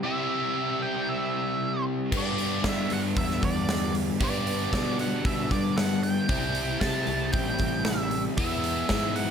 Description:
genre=classic rock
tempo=115 BPM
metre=4/4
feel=straight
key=unclear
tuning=A4 = 440 Hz
part: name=octave-fuzz lead guitar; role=melody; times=0.0-9.3 s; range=D5 to A5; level=-32 LUFS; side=right 3 dB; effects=distortion
part: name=biting overdriven guitar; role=riff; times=0.0-9.3 s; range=G2 to G4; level=-28 LUFS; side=left 1 dB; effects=none
part: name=fuzz picked electric bass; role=bass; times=2.1-9.3 s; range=A1 to G3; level=-31 LUFS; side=equal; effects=overdrive
part: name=big rock drum kit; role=drums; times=2.1-9.3 s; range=crash cymbal, hi-hat, kick drum, snare drum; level=-30 LUFS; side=equal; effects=none
room=studio reverb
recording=none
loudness=-24 LUFS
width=side -7 dB against mid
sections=0.0-9.3 A section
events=none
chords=0.0 C; 2.1 G; 6.3 C; 8.4 E

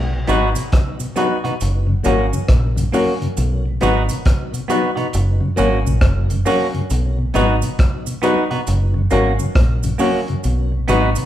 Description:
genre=roots reggae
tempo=68 BPM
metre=4/4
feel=swing 63% on 16ths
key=B major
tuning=A4 = 440 Hz
part: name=deep dub fingered electric bass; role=bass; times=0.0-11.1 s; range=F#1 to B1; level=-18 LUFS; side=equal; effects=none
part: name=mellow tonewheel organ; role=accompaniment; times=0.1-11.2 s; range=F#2 to D#4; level=-23 LUFS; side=left 2 dB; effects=slow rotary speaker, tape echo
part: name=semi-hollow electric guitar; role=accompaniment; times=0.3-11.1 s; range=A#3 to F#4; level=-21 LUFS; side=right 2 dB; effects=none
part: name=warm upright piano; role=stabs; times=0.3-11.1 s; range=C#4 to B4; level=-23 LUFS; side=left 4 dB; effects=none
part: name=crunchy breakbeat drum kit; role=drums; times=0.3-11.3 s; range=hi-hat, kick drum, rim click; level=-19 LUFS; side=equal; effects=none
part: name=cabasa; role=percussion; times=0.3-11.3 s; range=none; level=-33 LUFS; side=right 7 dB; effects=none
room=moderate large studio reverb, RT60 1.4 s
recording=band playing live in one room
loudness=-15 LUFS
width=side -12 dB against mid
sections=0.0-11.3 A section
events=none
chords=0.0 B; 1.6 F#; 3.4 B; 5.1 F#; 6.9 B; 8.7 F#; 10.4 B

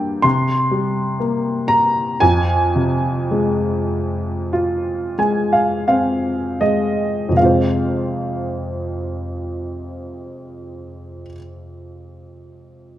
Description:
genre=classical, lyrical solo piano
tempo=39-64 BPM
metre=4/4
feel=rubato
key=F minor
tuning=A4 = 441 Hz
part: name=warm upright piano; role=solo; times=0.0-13.0 s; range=F2 to C6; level=-17 LUFS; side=equal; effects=none
room=moderate recital hall reverb, RT60 1.4 s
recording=none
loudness=-16 LUFS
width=side -12 dB against mid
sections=0.0-7.4 A section; 7.4-13.0 B section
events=slowing down 0.0-7.4; upright piano fill 4.5-7.4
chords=0.2 C5; 2.2 Fm

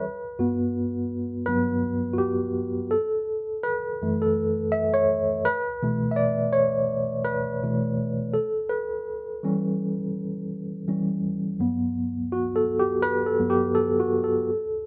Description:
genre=R&B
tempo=83 BPM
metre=4/4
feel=swing 58% on 16ths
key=unclear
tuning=A4 = 435 Hz
part: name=tine electric piano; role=solo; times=0.0-14.9 s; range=F#2 to E5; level=-26 LUFS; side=equal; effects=fast tremolo
room=moderate stone room reverb, RT60 1.2 s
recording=band playing live in one room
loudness=-26 LUFS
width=mono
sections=0.0-11.6 A section; 11.6-14.9 B section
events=tine electric piano solo 0.0-11.6, 11.6-14.9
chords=0.0 Gmaj7; 2.9 F#m7; 5.5 B9sus4; 8.3 Em6; 11.6 Gmaj7

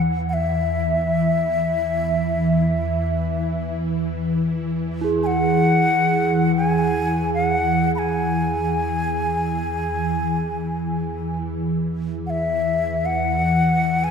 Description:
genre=world meditative, free-time meditation music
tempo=free time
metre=none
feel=none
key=E major pentatonic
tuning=A4 = 440 Hz
part: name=ethereal airy pad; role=drone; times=0.0-14.1 s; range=E2 to E3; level=-22 LUFS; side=equal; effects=ensemble chorus, built-in reverb
part: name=breathy bright xiao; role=melody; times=0.3-14.1 s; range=E5 to B5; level=-22 LUFS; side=left 1 dB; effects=ping-pong delay
part: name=bronze singing bowl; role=texture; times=5.0-12.9 s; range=E4 to G#4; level=-26 LUFS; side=right 5 dB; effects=none
room=wet plate reverb, RT60 2.9 s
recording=dreamy mix soaked in reverb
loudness=-19 LUFS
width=side -6 dB against mid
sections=0.0-14.1 A section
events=none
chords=none

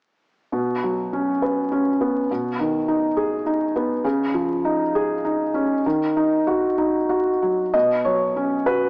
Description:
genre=neoclassical minimalist piano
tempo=60-70 BPM (dotted quarters)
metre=6/8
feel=rubato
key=unclear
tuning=A4 = 440 Hz
part: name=felt-muted upright piano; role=solo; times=0.5-8.9 s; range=B2 to Eb5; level=-22 LUFS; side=equal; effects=none
room=light reverb, small room ambience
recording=home recording on cassette, vinyl crackle, small speaker sound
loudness=-22 LUFS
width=mono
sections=0.5-7.7 A section; 7.7-8.9 B section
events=none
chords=0.5 Bsus2; 2.3 Abm/Cb; 4.0 Dbadd9; 5.8 Ebm; 7.7 Bsus2

